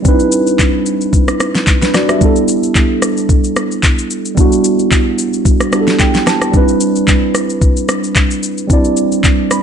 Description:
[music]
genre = amapiano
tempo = 111 BPM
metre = 4/4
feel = swing 55% on 16ths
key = unclear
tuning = A4 = 440 Hz
[part]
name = mellow tine electric piano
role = accompaniment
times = 0.0-9.6 s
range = G3 to B5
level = -13 LUFS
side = right 2 dB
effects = wide subtle chorus
[part]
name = smooth R&B drum kit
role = drums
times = 0.0-9.6 s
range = handclaps, kick drum, rim click, shaker, snare drum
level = -12 LUFS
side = left 1 dB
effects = none
[sound]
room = light reverb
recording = nothing above 10.7 kHz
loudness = -10 LUFS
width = side -8 dB against mid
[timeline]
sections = 0.0-9.6 A section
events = tine electric piano fill 5.7-6.5, 9.2-9.6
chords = 0.0 Cmaj7; 2.2 G69; 6.5 Cmaj7

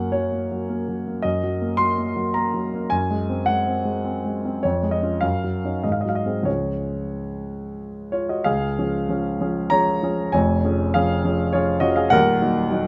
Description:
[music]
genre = classical, romantic character piece for solo piano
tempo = 88-109 BPM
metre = 3/4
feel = rubato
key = Db major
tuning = A4 = 440 Hz
[part]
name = warm concert grand piano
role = solo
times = 0.0-12.9 s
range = Eb1 to C6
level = -22 LUFS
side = equal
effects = none
[sound]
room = light reverb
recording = none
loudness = -22 LUFS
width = mono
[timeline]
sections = 0.0-8.5 A section; 8.5-12.9 B section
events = none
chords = 0.0 Gb; 2.9 Ab7/Gb; 4.6 Db/F; 5.2 Ebm7/Gb; 5.8 Ab7; 6.5 Db; 10.3 Db/F; 12.1 Ebm

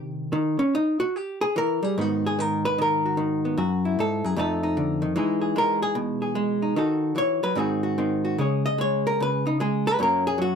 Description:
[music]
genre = solo jazz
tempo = 150 BPM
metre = 4/4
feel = swing 65% on 8ths, rubato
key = G# minor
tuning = A4 = 438 Hz
[part]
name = hollow-body jazz guitar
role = solo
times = 0.0-10.6 s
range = F2 to D#5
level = -22 LUFS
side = equal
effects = none
[sound]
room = light reverb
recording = close, detailed microphones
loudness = -22 LUFS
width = side -6 dB against mid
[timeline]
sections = 0.0-2.0 A section; 2.0-10.6 A section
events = hollow-body jazz guitar solo 0.0-10.6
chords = 0.3 Eb; 2.0 G#m7; 3.6 F#m9; 4.4 F7; 5.2 Emaj7; 6.8 D#dim; 7.6 G#7; 8.4 C#5; 10.0 F#

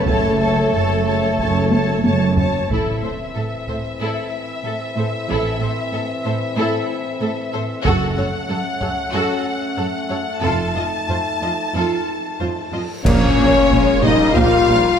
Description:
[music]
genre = cinematic, epic orchestral film score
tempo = 93 BPM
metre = 4/4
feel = straight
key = unclear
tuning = A4 = 440 Hz
[part]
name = clear symphonic violin section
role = melody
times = 0.0-15.0 s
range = A4 to A5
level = -25 LUFS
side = left 2 dB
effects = none
[part]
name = rich studio violin section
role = second line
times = 0.0-15.0 s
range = E4 to A5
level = -28 LUFS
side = left 2 dB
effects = none
[part]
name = rich symphonic viola section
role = accompaniment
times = 0.0-15.0 s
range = G3 to A5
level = -25 LUFS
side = equal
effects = none
[part]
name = bright trombone section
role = sustained chords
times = 0.0-2.3, 13.1-14.6 s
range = C#3 to Bb3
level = -25 LUFS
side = right 4 dB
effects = none
[part]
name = mellow French horn section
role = sustained chords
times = 0.0-15.0 s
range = E3 to F4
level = -22 LUFS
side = left 3 dB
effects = none
[part]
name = clear symphonic double bass section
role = bass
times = 0.1-14.8 s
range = F1 to Bb1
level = -23 LUFS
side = right 3 dB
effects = none
[part]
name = rich symphonic cello section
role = bass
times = 0.1-14.8 s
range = F2 to Bb2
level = -25 LUFS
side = right 3 dB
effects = none
[part]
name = taiko ensemble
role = drums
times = 0.1-15.0 s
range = none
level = -23 LUFS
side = equal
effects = none
[part]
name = impact, reverse cymbal and sub drop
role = sound effects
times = 2.8-5.3, 12.8-15.0 s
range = none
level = -31 LUFS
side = equal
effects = none
[part]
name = cymbal swell, clash cymbals and concert bass drum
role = percussion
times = 10.4-14.3 s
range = none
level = -26 LUFS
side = equal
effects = none
[part]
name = mellow concert flute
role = second line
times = 13.1-15.0 s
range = Db5 to F5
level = -25 LUFS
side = right 2 dB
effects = none
[part]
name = warm symphonic string section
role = sustained chords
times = 13.1-15.0 s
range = Bb3 to F5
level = -26 LUFS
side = left 2 dB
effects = none
[part]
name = warm tuba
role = bass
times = 13.1-14.8 s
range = Bb1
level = -26 LUFS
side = right 4 dB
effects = none
[sound]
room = wet scoring stage reverb, RT60 1.8 s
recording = none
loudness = -16 LUFS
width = side -8 dB against mid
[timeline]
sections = 0.0-2.7 A section; 2.7-13.1 B section; 13.1-15.0 C section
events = drum fill 1.7-2.7; impact 2.7-5.3, 13.1-15.0; reverse cymbal 12.8; band accent 13.1-13.7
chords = 0.0 F#m; 2.7 Am; 7.9 F#m; 10.4 F7; 13.1 Bbm

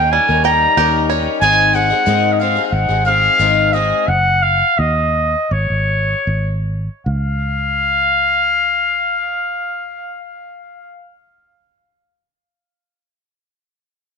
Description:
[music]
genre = indie folk with a building arrangement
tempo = 74-93 BPM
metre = 4/4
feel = straight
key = Db major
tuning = A4 = 440 Hz
[part]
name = warm trumpet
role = melody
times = 0.0-11.1 s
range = Db5 to Bb5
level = -15 LUFS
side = equal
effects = none
[part]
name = picked twelve-string acoustic guitar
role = accompaniment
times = 0.0-4.1 s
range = Ab2 to Bb4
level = -19 LUFS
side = left 12 dB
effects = none
[part]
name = bluegrass banjo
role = arpeggios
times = 0.0-1.4 s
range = G3 to G5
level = -20 LUFS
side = right 9 dB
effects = none
[part]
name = fingered electric bass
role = bass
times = 0.0-11.8 s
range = Gb1 to Ab2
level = -19 LUFS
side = right 1 dB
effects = none
[sound]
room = moderate echo chamber reverb, RT60 2.2 s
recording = 1960s-style stereo with parts hard left and right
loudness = -13 LUFS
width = side -6 dB against mid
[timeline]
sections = 0.0-7.1 A section; 7.1-10.3 B section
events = slowing down 1.4-7.1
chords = 0.0 Eb7; 1.4 Ab; 4.1 Ebmadd9/Gb; 5.5 Absus4; 7.1 Db

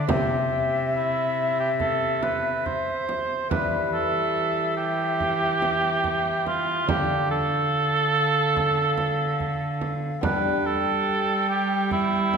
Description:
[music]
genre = classical, renaissance-style consort dance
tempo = 71 BPM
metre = 4/4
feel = straight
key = unclear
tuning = A4 = 440 Hz
[part]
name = mellow tenor recorder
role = melody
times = 0.0-12.4 s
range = E5 to G5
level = -29 LUFS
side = left 3 dB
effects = none
[part]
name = warm cor anglais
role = second line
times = 0.0-12.4 s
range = E4 to C5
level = -24 LUFS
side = right 3 dB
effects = none
[part]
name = lute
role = accompaniment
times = 0.0-12.4 s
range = C3 to E5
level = -33 LUFS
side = left 4 dB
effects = none
[part]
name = dark cello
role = bass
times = 0.0-12.4 s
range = C3 to G3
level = -29 LUFS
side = right 1 dB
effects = none
[part]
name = frame drum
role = percussion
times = 0.1-12.4 s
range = none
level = -32 LUFS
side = right 3 dB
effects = none
[sound]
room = wet concert hall reverb, RT60 1.9 s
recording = recorded in a church or concert hall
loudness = -22 LUFS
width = side -6 dB against mid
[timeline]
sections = 0.0-3.5 A section; 3.5-12.4 B section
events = none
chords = 0.1 C; 3.5 Em; 6.9 Dm; 10.2 G

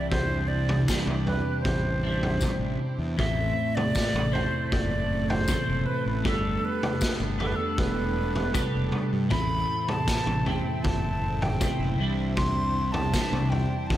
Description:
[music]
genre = psychedelic rock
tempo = 78 BPM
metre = 4/4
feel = straight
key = A minor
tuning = A4 = 440 Hz
[part]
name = breathy bright concert flute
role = melody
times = 0.0-14.0 s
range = A4 to C6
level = -31 LUFS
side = equal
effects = ping-pong delay
[part]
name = rich chamber string section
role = sustained chords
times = 0.0-14.0 s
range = A3 to C5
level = -37 LUFS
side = right 4 dB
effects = none
[part]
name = twelve-string electric guitar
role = riff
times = 0.0-14.0 s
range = A2 to B4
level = -30 LUFS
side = equal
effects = rotary speaker, double-tracked left and right
[part]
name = fuzz fingered electric bass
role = bass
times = 0.0-14.0 s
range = E1 to G2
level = -30 LUFS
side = equal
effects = overdrive
[part]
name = raw garage drum kit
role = drums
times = 0.1-14.0 s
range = kick drum, snare drum, toms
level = -28 LUFS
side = equal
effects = none
[part]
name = tambourine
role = percussion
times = 0.9-13.3 s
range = none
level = -41 LUFS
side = left 5 dB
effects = none
[sound]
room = light reverb, small room ambience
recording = none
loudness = -24 LUFS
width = side -13 dB against mid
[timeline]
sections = 0.0-14.0 A section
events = none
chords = 0.0 Cadd9; 3.2 Am; 6.2 Gadd9; 9.3 Am; 12.0 Cadd9

